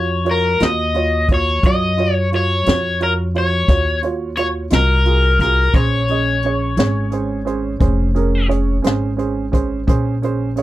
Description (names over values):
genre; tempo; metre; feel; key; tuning
slow blues; 58 BPM (dotted quarters); 12/8; straight; unclear; A4 = 441 Hz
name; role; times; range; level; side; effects
overdriven electric guitar; melody; 0.0-8.5 s; Bb4 to Eb5; -19 LUFS; left 2 dB; none
warm upright piano; accompaniment; 0.0-10.6 s; Db4 to Eb5; -22 LUFS; right 5 dB; none
upright bass; bass; 0.0-10.6 s; F1 to Gb2; -19 LUFS; equal; none
jazz brush drum kit; drums; 0.3-10.6 s; hi-hat, kick drum, snare drum; -17 LUFS; equal; none
room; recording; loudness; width
little or no reverb; none; -15 LUFS; side -15 dB against mid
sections
0.0-10.6 A section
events
none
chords
0.0 Ebm7; 5.7 Bbm7